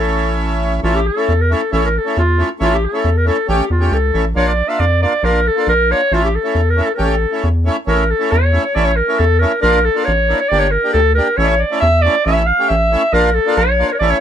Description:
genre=klezmer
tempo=137 BPM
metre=2/4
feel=straight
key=A phrygian dominant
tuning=A4 = 444 Hz
part: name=warm clarinet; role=melody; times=0.0-14.2 s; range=F4 to F5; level=-15 LUFS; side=equal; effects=none
part: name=accordion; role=accompaniment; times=0.0-14.2 s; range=A3 to G4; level=-20 LUFS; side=equal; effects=none
part: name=rubbery square bass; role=bass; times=0.0-14.1 s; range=G1 to F2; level=-16 LUFS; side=equal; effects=none
room=little or no reverb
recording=close, detailed microphones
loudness=-12 LUFS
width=side -9 dB against mid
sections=0.8-7.9 A section; 7.9-14.2 B section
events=none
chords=0.0 A; 4.4 Bb; 6.1 A; 9.6 Bb; 10.5 Gm; 11.4 A; 13.1 Bb

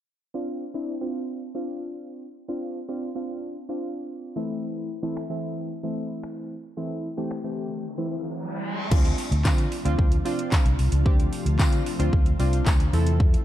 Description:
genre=dance-pop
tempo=112 BPM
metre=4/4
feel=straight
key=unclear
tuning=A4 = 438 Hz
part: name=warm analog keys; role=accompaniment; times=0.3-13.4 s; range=E3 to A4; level=-30 LUFS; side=equal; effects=chorus
part: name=pop drum kit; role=drums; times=5.2-13.4 s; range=crash cymbal, finger snaps, handclaps, hi-hat, kick drum, snare drum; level=-22 LUFS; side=equal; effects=none
part: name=riser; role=sound effects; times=7.7-8.9 s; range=none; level=-34 LUFS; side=right 1 dB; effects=none
part: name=ethereal airy pad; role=sustained chords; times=9.4-13.4 s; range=C3 to E5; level=-33 LUFS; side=left 1 dB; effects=ensemble chorus, built-in reverb, sidechain pumping
part: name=vintage muted fingered electric bass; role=bass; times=8.9-13.3 s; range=C2 to D3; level=-23 LUFS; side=equal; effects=sidechain pumping
part: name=tambourine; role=percussion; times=9.4-12.8 s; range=none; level=-40 LUFS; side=left 7 dB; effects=none
room=light reverb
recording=dark, warm production, low-pass filter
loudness=-23 LUFS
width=side -12 dB against mid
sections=0.3-8.9 A section; 8.9-13.4 B section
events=filter sweep 0.3-8.9; riser 7.7-8.9; silent gap 7.8-8.9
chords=0.3 Dm7; 4.4 Am/E; 8.9 Dm7; 12.9 Am

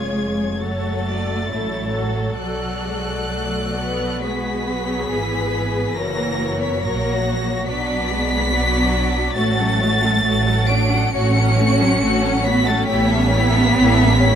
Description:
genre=classical, slow romantic movement for string orchestra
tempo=69 BPM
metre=4/4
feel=uneven beats, rubato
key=F# minor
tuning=A4 = 442 Hz
part: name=rich chamber violin section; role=melody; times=0.0-14.4 s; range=F#6 to D7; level=-24 LUFS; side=left 2 dB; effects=none
part: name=rich chamber violin section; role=second line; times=0.0-14.4 s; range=E4 to F#5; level=-25 LUFS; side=left 2 dB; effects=none
part: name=rich symphonic viola section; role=accompaniment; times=0.0-14.4 s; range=E3 to A4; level=-24 LUFS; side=left 1 dB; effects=none
part: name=rich chamber double bass section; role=bass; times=0.0-14.4 s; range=E#1 to B1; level=-22 LUFS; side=right 2 dB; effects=none
part: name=warm chamber cello section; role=bass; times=0.0-14.4 s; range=F#3 to D4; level=-23 LUFS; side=right 2 dB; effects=none
room=moderate scoring stage reverb, RT60 1.5 s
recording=none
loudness=-17 LUFS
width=side -8 dB against mid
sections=0.0-14.4 A section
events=none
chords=0.0 C#; 0.6 F#m; 2.4 Bm; 6.0 F#7; 7.7 Bm; 9.4 F#m/A; 12.9 A7

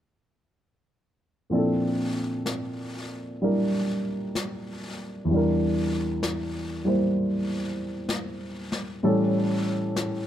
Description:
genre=jazz ballad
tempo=64 BPM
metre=4/4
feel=swing 67% on 8ths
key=unclear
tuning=A4 = 440 Hz
part: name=warm baby grand piano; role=accompaniment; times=1.5-10.3 s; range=E2 to C5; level=-25 LUFS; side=equal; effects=none
part: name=jazz brush drum kit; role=drums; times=1.5-10.3 s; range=brushed snare drum, hi-hat, snare drum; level=-34 LUFS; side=left 2 dB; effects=none
room=light reverb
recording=close, detailed microphones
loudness=-24 LUFS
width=side -11 dB against mid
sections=1.5-10.3 A section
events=none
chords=1.5 Bbmaj9#11; 5.3 Em7b5; 9.0 A7

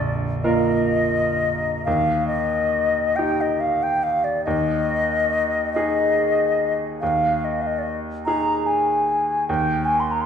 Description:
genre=classical, romantic duo for flute and grand piano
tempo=47 BPM (dotted quarters)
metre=6/8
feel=uneven beats, rubato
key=Eb major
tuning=A4 = 438 Hz
part: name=wooden flute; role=melody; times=0.0-10.3 s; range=D5 to C6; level=-21 LUFS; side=left 2 dB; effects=none
part: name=bright baby grand piano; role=accompaniment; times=0.0-10.3 s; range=Bb0 to Bb4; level=-24 LUFS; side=right 2 dB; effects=none
room=wet recital hall reverb, RT60 1.5 s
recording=heard from further back in the room, nothing above 10.5 kHz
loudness=-19 LUFS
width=side -8 dB against mid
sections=0.0-1.9 A section; 1.9-10.3 B section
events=none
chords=0.0 Bb5; 1.9 Eb; 4.5 Ab5/Eb; 9.5 Eb5

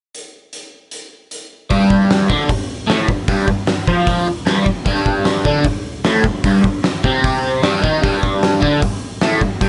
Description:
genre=garage rock duo or trio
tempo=152 BPM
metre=4/4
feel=straight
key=unclear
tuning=A4 = 439 Hz
part: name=oversized low-tuned drum kit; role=drums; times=0.1-9.7 s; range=hi-hat, kick drum, snare drum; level=-21 LUFS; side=equal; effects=none
part: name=crunchy overdriven guitar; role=riff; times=1.7-9.7 s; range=G2 to F4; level=-18 LUFS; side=equal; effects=phaser
room=light reverb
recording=nothing above 10.7 kHz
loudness=-16 LUFS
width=mono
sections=0.1-1.7 A section; 1.7-9.7 B section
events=none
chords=0.1 N.C.; 1.7 G5

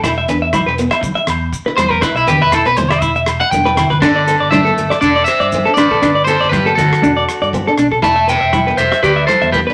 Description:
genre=highlife guitar band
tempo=120 BPM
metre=4/4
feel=swing 54% on 16ths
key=G major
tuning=A4 = 439 Hz
part: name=clean electric guitar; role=arpeggios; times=0.0-9.7 s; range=D4 to E5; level=-18 LUFS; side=equal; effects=none
part: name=fingered electric bass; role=bass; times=0.0-9.6 s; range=E1 to G2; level=-24 LUFS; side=equal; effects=none
part: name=damped 70s drum kit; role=drums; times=0.0-9.7 s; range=crash cymbal, hi-hat, kick drum, rim click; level=-26 LUFS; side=equal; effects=none
part: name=congas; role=percussion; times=0.0-9.7 s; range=none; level=-24 LUFS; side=equal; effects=none
part: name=maracas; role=percussion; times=0.0-9.7 s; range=none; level=-38 LUFS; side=equal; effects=none
part: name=picked acoustic archtop guitar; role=accompaniment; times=0.1-9.7 s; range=A3 to E4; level=-25 LUFS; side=equal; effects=none
part: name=agogo bells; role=percussion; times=0.1-3.9 s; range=none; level=-26 LUFS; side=equal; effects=none
part: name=electric guitar at the edge of break-up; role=melody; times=1.8-9.6 s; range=D4 to A5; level=-16 LUFS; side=equal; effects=none
room=wet studio reverb, RT60 0.8 s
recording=none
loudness=-14 LUFS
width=mono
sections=0.0-4.0 A section; 4.0-9.7 B section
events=clean electric guitar solo 0.0-4.0; drum fill 3.7-4.0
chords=0.0 E5

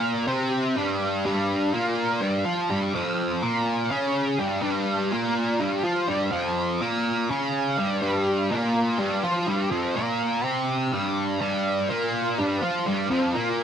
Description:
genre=rock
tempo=248 BPM (eighths)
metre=7/8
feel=straight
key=unclear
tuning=A4 = 440 Hz
part: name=overdriven electric guitar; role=solo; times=0.0-13.6 s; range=F2 to F4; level=-22 LUFS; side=equal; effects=flanger
room=light reverb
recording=none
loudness=-22 LUFS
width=side -8 dB against mid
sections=0.0-8.0 A section; 8.0-13.6 B section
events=none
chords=0.0 Fsus24

